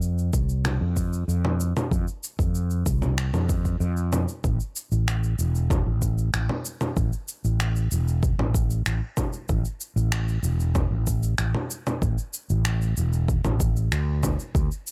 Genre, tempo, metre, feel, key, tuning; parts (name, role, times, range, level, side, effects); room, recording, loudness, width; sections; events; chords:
sunset chillout; 95 BPM; 4/4; straight; A minor; A4 = 440 Hz
fretless electric bass; bass; 0.0-14.7 s; E1 to F2; -26 LUFS; equal; tube saturation
electronic cabasa, finger snaps and congas; drums; 0.0-14.9 s; -32 LUFS; equal
electronic kick drum; drums; 0.3-14.7 s; -28 LUFS; equal
little or no reverb; dry, gritty hardware recording, transformer saturation; -25 LUFS; mono
0.0-4.4 A section; 4.4-14.9 B section